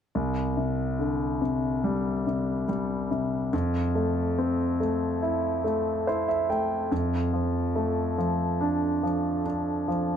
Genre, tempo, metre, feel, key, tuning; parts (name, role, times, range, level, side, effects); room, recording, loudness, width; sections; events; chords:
pop; 71 BPM; 4/4; straight; C major; A4 = 439 Hz
warm concert grand piano; accompaniment; 0.2-10.2 s; C2 to G5; -24 LUFS; equal
light reverb; -24 LUFS; side -8 dB against mid
0.2-10.2 A section
grand piano fill 5.6-6.9
0.2 Csus2; 3.5 Fmaj7; 6.9 Dm/F